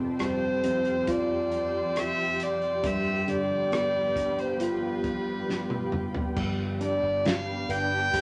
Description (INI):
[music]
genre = pop ballad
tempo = 68 BPM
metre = 4/4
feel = straight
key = unclear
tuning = A4 = 435 Hz
[part]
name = dark baby grand piano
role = accompaniment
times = 0.0-8.2 s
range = F2 to B4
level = -34 LUFS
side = equal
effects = none
[part]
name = shimmering ambient pad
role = sustained chords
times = 0.0-8.2 s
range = F2 to G4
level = -36 LUFS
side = equal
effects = chorus, built-in reverb
[part]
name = warm violin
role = melody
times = 0.2-8.2 s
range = B4 to G5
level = -30 LUFS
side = equal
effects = none
[part]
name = loose indie drum kit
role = drums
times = 0.2-8.2 s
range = crash cymbal, hi-hat, kick drum, rim click, snare drum, toms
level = -35 LUFS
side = equal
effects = none
[part]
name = vintage muted fingered electric bass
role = bass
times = 6.4-8.2 s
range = G1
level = -37 LUFS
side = equal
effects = none
[sound]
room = wet studio reverb, RT60 0.9 s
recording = none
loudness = -28 LUFS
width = mono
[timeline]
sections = 0.0-6.4 A section; 6.4-8.2 B section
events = drum fill 5.5-6.4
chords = 0.0 Fsus2; 2.8 G7; 6.4 G